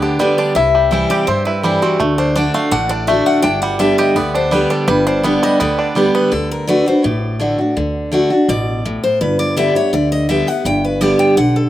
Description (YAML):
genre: bluegrass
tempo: 166 BPM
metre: 4/4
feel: straight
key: G major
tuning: A4 = 441 Hz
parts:
  - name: bluegrass banjo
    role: melody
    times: 0.0-6.3 s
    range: G3 to G4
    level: -19 LUFS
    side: right 4 dB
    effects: slapback echo
  - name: picked steel-string acoustic guitar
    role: melody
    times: 0.0-11.7 s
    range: F#4 to G5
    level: -18 LUFS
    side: left 4 dB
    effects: slapback echo
  - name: picked steel-string acoustic guitar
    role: accompaniment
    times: 0.0-11.7 s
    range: G2 to G4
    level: -16 LUFS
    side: equal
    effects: slapback echo
  - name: upright bass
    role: bass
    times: 0.0-11.7 s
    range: G1 to G2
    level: -22 LUFS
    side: equal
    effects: none
room: little or no reverb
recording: recorded outdoors, with no room sound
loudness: -13 LUFS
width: side -13 dB against mid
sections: 0.0-6.3 A section; 6.3-11.7 A section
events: steel-string acoustic guitar solo 0.0-11.7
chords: 0.0 G; 0.6 C; 2.0 D; 3.4 G; 6.3 D; 9.2 G